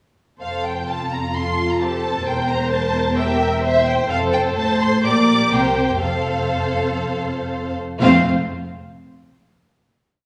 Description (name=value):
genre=quick classical-period movement for string orchestra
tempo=119-132 BPM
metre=4/4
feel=straight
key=F major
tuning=A4 = 439 Hz
part: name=warm symphonic violin section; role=melody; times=0.4-8.3 s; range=E5 to D6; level=-25 LUFS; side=equal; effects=none
part: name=dark symphonic violin section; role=second line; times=0.4-8.3 s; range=F4 to C5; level=-27 LUFS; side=equal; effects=none
part: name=dark symphonic cello section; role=bass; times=0.4-8.3 s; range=E2 to C3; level=-25 LUFS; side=equal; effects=none
part: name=warm symphonic double bass section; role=bass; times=0.4-8.3 s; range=E1 to C2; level=-29 LUFS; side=equal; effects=none
part: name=rich symphonic viola section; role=accompaniment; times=1.3-8.3 s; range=A3 to E5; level=-26 LUFS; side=equal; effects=none
room=wet recital hall reverb, RT60 1.4 s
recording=recorded in a church or concert hall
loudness=-19 LUFS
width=mono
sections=0.4-8.0 theme; 8.0-10.0 final chord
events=slowing down 3.2-8.0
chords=0.4 F; 2.3 C7/E; 4.1 F; 5.0 Gm/Bb; 5.5 C5; 6.0 F